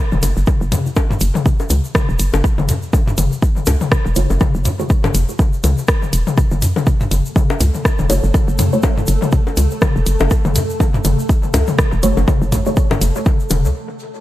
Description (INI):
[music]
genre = minimal techno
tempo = 122 BPM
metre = 4/4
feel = swing 57% on 16ths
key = F# minor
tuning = A4 = 440 Hz
[part]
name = hollow knocking FM bass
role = bass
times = 0.1-13.7 s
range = E1 to F#2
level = -16 LUFS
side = equal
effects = sidechain pumping
[part]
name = egg shaker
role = percussion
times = 0.1-13.7 s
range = none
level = -29 LUFS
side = equal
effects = tape echo
[part]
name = electronic toms and bongos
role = percussion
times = 0.1-13.6 s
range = none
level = -20 LUFS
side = left 3 dB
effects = overdrive, dub echo
[part]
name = filtered dub chord stab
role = stabs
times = 0.2-0.9, 4.2-4.9, 8.1-8.8, 12.0-12.7 s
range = A3 to C#5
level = -23 LUFS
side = right 1 dB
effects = phaser, lush chorus, tape echo
[part]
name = house drum kit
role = drums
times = 0.2-13.6 s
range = hi-hat, rim click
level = -22 LUFS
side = equal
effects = tape echo
[part]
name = electronic kick drum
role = drums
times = 0.5-13.4 s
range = none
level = -15 LUFS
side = equal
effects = none
[part]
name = swarming drone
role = texture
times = 7.3-13.8 s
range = A3 to A4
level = -27 LUFS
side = right 1 dB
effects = built-in reverb, sidechain pumping
[sound]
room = light reverb, digital ambience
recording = echo-heavy mix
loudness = -14 LUFS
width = side -15 dB against mid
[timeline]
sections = 0.0-14.2 A section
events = filter sweep on synth stab 0.0-14.2; break 13.8-14.2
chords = 0.0 F#m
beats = | 0.47 0.97 1.46 1.95 | 2.44 2.93 3.42 3.92 | 4.41 4.90 5.39 5.88 | 6.38 6.87 7.36 7.85 | 8.34 8.84 9.33 9.82 | 10.31 10.80 11.29 11.79 | 12.28 12.77 13.26 13.75